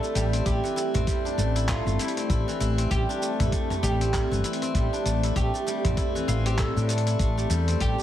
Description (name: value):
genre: organic downtempo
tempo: 98 BPM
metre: 4/4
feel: swing 59% on 16ths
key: A minor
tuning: A4 = 440 Hz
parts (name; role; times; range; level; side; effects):
- oud; melody; 0.0-8.0 s; E4 to A4; -32 LUFS; right 3 dB; digital delay
- warbly tape-like pad; sustained chords; 0.0-8.0 s; A3 to G4; -33 LUFS; left 2 dB; chorus, built-in reverb, vintage 12-bit sampler grit, sidechain pumping
- steel-string zither; arpeggios; 0.0-8.0 s; E3 to E4; -30 LUFS; left 1 dB; tape echo
- dusty soul sampler-style drum kit; drums; 0.0-8.0 s; cabasa, handclaps, hi-hat, toms; -33 LUFS; equal; none
- woody fretless electric bass; bass; 0.2-7.9 s; G1 to A2; -25 LUFS; equal; none
- electronic kick drum; drums; 0.5-8.0 s; none; -29 LUFS; equal; none
room: light reverb, digital ambience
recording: heavily compressed radio sound, multiband compression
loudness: -23 LUFS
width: side -12 dB against mid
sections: 0.0-8.0 A section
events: none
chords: 0.0 Am7